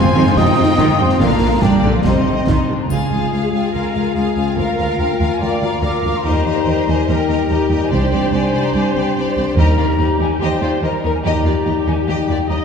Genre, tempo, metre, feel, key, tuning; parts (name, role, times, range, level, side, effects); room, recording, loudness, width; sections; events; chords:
cinematic, heroic adventure film score; 144 BPM; 4/4; straight; A4 = 441 Hz
rich symphonic violin section; melody; 0.0-12.6 s; Bb4 to Ab5; -25 LUFS; left 4 dB
hollow concert flute; second line; 0.0-12.6 s; F5 to Eb6; -25 LUFS; left 1 dB
rich symphonic violin section; second line; 0.0-12.6 s; C4 to C5; -25 LUFS; left 2 dB
rich symphonic viola section; accompaniment; 0.0-12.6 s; C3 to Eb5; -23 LUFS; right 1 dB
warm trumpet; stabs; 0.0-2.5 s; F4 to Eb5; -24 LUFS; left 1 dB
rich symphonic double bass section; bass; 0.0-11.4 s; Bb1 to F2; -21 LUFS; right 2 dB
warm symphonic cello section; bass; 0.0-12.6 s; C2 to Eb4; -19 LUFS; right 2 dB
concert snare drum and concert bass drum; drums; 0.3-2.6 s; -20 LUFS; left 1 dB
dark French horn section; sustained chords; 2.9-12.6 s; G3 to F4; -21 LUFS; left 6 dB
triangle; percussion; 2.9-3.7 s; -42 LUFS; left 3 dB
wet concert hall reverb, RT60 2.2 s; heard from further back in the room; -14 LUFS; side -6 dB against mid
0.0-2.9 A section; 2.9-12.6 B section
0.0 Fm7; 1.2 Bb; 2.0 Cm; 2.9 Db; 4.6 Bb/D; 6.2 Eb; 7.9 Csus2; 9.6 Eb